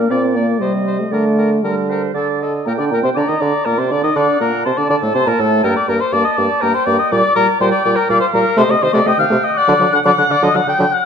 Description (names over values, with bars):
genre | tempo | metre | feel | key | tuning
quick classical-period movement for wind quintet | 121 BPM | 3/4 | straight | G minor | A4 = 435 Hz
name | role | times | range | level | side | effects
clear clarinet | accompaniment | 0.0-10.8 s | Bb4 to Bb5 | -22 LUFS | right 7 dB | none
mellow French horn | accompaniment | 0.0-10.8 s | D3 to Eb4 | -19 LUFS | equal | none
mellow bassoon | bass | 0.0-10.9 s | G2 to Eb3 | -19 LUFS | right 3 dB | none
mellow hollow concert flute | melody | 0.1-11.1 s | Eb5 to G6 | -19 LUFS | left 8 dB | none
warm oboe | second line | 0.1-11.0 s | A4 to G5 | -19 LUFS | left 3 dB | none
room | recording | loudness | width
moderate recital hall reverb, RT60 1.3 s | dark, warm production | -13 LUFS | side -7 dB against mid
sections
0.0-2.7 A section; 2.7-11.1 B section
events
none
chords
0.0 Bb; 0.6 Cm; 1.1 Gm/D; 2.2 D5; 2.7 Gm/Bb; 4.2 D7; 5.6 Gm; 7.1 Gm/Bb; 8.6 Adim/C; 9.6 D